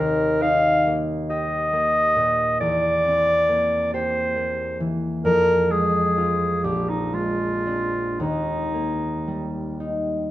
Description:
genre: classical, romantic duo for clarinet and harp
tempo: 36-47 BPM (dotted quarters)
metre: 6/8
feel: rubato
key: Eb major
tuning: A4 = 440 Hz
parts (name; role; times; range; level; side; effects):
- warm clarinet; melody; 0.0-9.8 s; Eb4 to F5; -21 LUFS; equal; none
- concert harp; accompaniment; 0.0-10.3 s; Bb1 to G4; -24 LUFS; equal; none
room: moderate recital hall reverb, RT60 1.6 s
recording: close, detailed microphones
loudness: -19 LUFS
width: side -14 dB against mid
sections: 0.0-10.3 A section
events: none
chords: 0.0 Eb; 2.6 C7/E; 5.3 Fm; 6.6 Bb9; 8.2 Eb

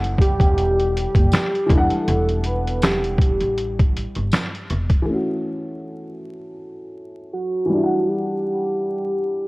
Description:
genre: lo-fi hip hop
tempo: 80 BPM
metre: 4/4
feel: swing 56% on 16ths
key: unclear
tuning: A4 = 440 Hz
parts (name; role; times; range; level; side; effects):
- dark upright piano; accompaniment; 0.0-9.5 s; E3 to F#5; -26 LUFS; left 1 dB; cassette tape, low-pass filter
- upright bass; bass; 0.0-4.9 s; E1 to A1; -23 LUFS; equal; none
- trip hop sampler-style drum kit; drums; 0.0-5.1 s; finger snaps, hi-hat, kick drum, snare drum; -19 LUFS; equal; none
- warm velvety synth lead; melody; 0.2-9.5 s; F#4 to B4; -22 LUFS; equal; chorus, tremolo, low-pass filter
- tambourine; percussion; 1.3-4.5 s; none; -42 LUFS; left 2 dB; none
room: light reverb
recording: worn, warbling old tape, cassette tape, vinyl crackle, warbly pitch drift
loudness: -18 LUFS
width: side -22 dB against mid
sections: 0.0-5.1 A section; 5.1-9.5 B section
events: filter sweep 5.1-9.5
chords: 0.0 F#m7; 1.7 Em9; 5.1 F#m7; 7.7 Em9

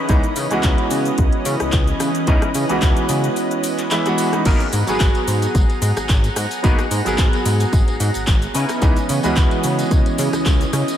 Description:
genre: nu-disco, nu disco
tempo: 110 BPM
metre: 4/4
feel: swing 54% on 16ths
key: unclear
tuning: A4 = 439 Hz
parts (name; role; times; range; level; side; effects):
- lush unison pad; sustained chords; 0.0-11.0 s; E3 to A#5; -24 LUFS; right 1 dB; chorus, vintage 12-bit sampler grit, sidechain pumping
- electric guitar with an envelope filter; riff; 0.0-10.5 s; B3 to B4; -29 LUFS; left 3 dB; ensemble chorus, tape echo
- bright concert grand piano; accompaniment; 0.1-11.0 s; E3 to G#4; -22 LUFS; right 1 dB; tape echo
- chorused synth bass; bass; 0.1-10.8 s; G#1 to C#3; -21 LUFS; equal; none
- electronic kick drum; drums; 0.1-10.6 s; none; -16 LUFS; equal; none
- house drum kit; drums; 0.1-11.0 s; crash cymbal, handclaps, hi-hat, rim click, shaker; -26 LUFS; left 1 dB; none
- tambourine; percussion; 4.5-11.0 s; none; -35 LUFS; right 2 dB; none
room: light reverb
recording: none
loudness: -15 LUFS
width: side -10 dB against mid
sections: 0.0-11.0 A section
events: none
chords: 0.0 C#m9; 4.5 G#m9; 8.5 C#m9

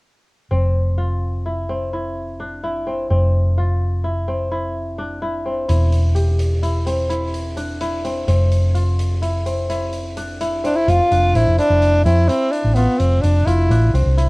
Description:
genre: progressive instrumental, band music in an uneven meter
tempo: 255 BPM (eighths)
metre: 11/8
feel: straight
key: unclear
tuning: A4 = 444 Hz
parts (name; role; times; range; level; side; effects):
- kora; arpeggios; 0.5-14.3 s; C4 to G4; -24 LUFS; left 1 dB; cassette tape
- hollow-body short-scale fingered electric bass; bass; 0.5-14.3 s; E1 to F2; -18 LUFS; equal; none
- hi-hat; drums; 5.7-14.3 s; none; -36 LUFS; right 1 dB; none
- warm tenor saxophone; melody; 10.7-13.9 s; B3 to F4; -17 LUFS; equal; none
room: moderate booth ambience, RT60 0.2 s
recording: home recording on cassette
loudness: -16 LUFS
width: side -25 dB against mid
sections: 0.5-10.9 A section; 10.9-14.3 B section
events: none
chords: 0.5 F5; 5.7 Em7; 8.3 F5; 10.9 Fmaj7

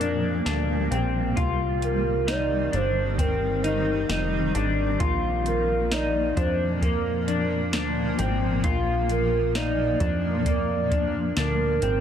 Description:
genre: dream pop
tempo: 66 BPM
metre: 4/4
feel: straight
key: unclear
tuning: A4 = 440 Hz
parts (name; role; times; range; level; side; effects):
- hollow clarinet-like synth lead; melody; 0.0-12.0 s; Bb4 to D5; -29 LUFS; right 3 dB; chorus, ping-pong delay
- granular cloud pad; sustained chords; 0.0-12.0 s; Bb2 to C4; -30 LUFS; equal; built-in reverb, tremolo
- electric guitar through a small old amp; arpeggios; 0.0-12.0 s; Bb3 to F4; -28 LUFS; left 4 dB; analog chorus, ping-pong delay
- plucky analog bass; bass; 0.0-12.0 s; F1 to F2; -28 LUFS; equal; none
- soft vintage rhythm box; drums; 0.0-12.0 s; hi-hat, kick drum, snare drum; -28 LUFS; equal; none
room: light reverb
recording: none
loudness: -22 LUFS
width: side -9 dB against mid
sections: 0.0-12.0 A section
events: none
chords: 0.0 Bb; 1.4 Cm; 5.0 Bb

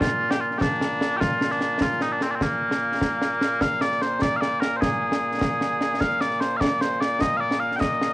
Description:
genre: scottish traditional, Scottish pipe music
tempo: 100 BPM (dotted quarters)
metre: 6/8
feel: straight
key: Bb mixolydian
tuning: A4 = 440 Hz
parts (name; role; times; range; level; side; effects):
- mellow small bagpipes; melody; 0.0-8.1 s; Bb2 to G5; -22 LUFS; equal; cassette tape, tape echo
- concert snare drum and concert bass drum; drums; 0.0-8.1 s; none; -25 LUFS; equal; none
room: light reverb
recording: home recording on cassette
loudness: -21 LUFS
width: side -20 dB against mid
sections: 0.0-3.6 A section; 3.6-8.1 B section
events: none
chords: none

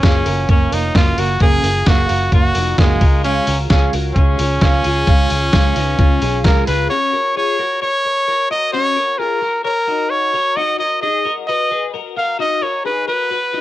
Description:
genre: jangly indie pop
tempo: 131 BPM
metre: 4/4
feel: straight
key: F# major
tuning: A4 = 438 Hz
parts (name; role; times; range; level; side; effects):
- bright trumpet; melody; 0.0-13.6 s; G#3 to E#5; -17 LUFS; equal; cassette tape
- fingerpicked twelve-string acoustic guitar; accompaniment; 0.0-6.9 s; F#2 to A#4; -22 LUFS; right 8 dB; cassette tape
- twelve-string electric guitar; arpeggios; 0.0-13.6 s; B3 to C#5; -25 LUFS; left 11 dB; lush chorus, cassette tape
- vintage muted fingered electric bass; bass; 0.0-6.9 s; E#1 to C#2; -20 LUFS; equal; none
- lo-fi sampler-style drum kit; drums; 0.0-6.8 s; hi-hat, kick drum, snare drum; -15 LUFS; equal; cassette tape
room: light reverb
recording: home recording on cassette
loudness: -14 LUFS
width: side -14 dB against mid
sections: 0.0-6.9 A section; 6.9-13.6 A section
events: none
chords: 0.0 F#maj7; 3.0 C#; 6.9 F#maj7; 10.6 B

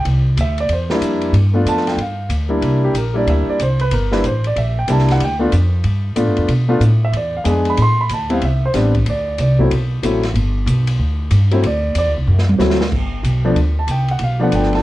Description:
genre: jazz, small-group swing and bop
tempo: 187 BPM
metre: 4/4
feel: swing 63% on 8ths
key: G mixolydian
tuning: A4 = 443 Hz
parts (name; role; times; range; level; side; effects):
- warm concert grand piano; accompaniment; 0.0-14.8 s; F3 to C6; -18 LUFS; equal; none
- upright bass; bass; 0.0-14.8 s; G1 to B2; -16 LUFS; equal; none
- open jazz drum kit; drums; 0.1-14.8 s; crash cymbal, hi-hat, kick drum, ride cymbal, snare drum, toms; -26 LUFS; equal; none
room: light reverb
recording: worn, warbling old tape, cassette tape, warbly pitch drift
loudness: -14 LUFS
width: side -16 dB against mid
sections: 0.0-12.9 A section; 12.9-14.8 A section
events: drum fill 12.3-12.9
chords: 0.1 C7; 1.3 G7; 2.6 C7; 5.2 G7; 6.5 Bm7b5; 7.1 E7b9; 7.8 Am7; 9.1 D7; 10.4 G; 11.6 D7; 12.9 G7

